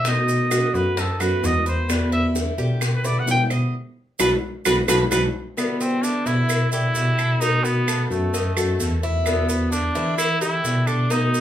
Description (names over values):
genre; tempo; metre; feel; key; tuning
latin, Cuban son and guajira; 130 BPM; 4/4; straight; E minor; A4 = 439 Hz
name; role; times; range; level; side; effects
clear trumpet; melody; 0.0-11.4 s; A3 to G5; -24 LUFS; right 1 dB; none
picked acoustic archtop guitar; accompaniment; 0.0-11.4 s; B2 to F#4; -26 LUFS; left 1 dB; none
Cuban tres; arpeggios; 0.0-11.4 s; D#4 to D#5; -27 LUFS; right 2 dB; none
mellow tine electric piano; bass; 0.0-11.4 s; B1 to E3; -23 LUFS; equal; medium tremolo
bongos and cowbell; percussion; 0.0-11.3 s; none; -30 LUFS; left 4 dB; none
maracas; percussion; 0.1-11.4 s; none; -32 LUFS; right 4 dB; none
claves; percussion; 0.5-11.1 s; none; -30 LUFS; right 5 dB; none
room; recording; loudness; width
wet small room reverb, RT60 0.5 s; band playing live in one room; -19 LUFS; side -11 dB against mid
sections
0.0-5.6 A section; 5.6-11.4 B section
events
trumpet solo 0.0-5.6; band accent 3.7-5.6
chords
0.1 B7; 1.9 Em7; 3.7 B5; 5.6 Em7; 7.4 B7; 9.3 Em7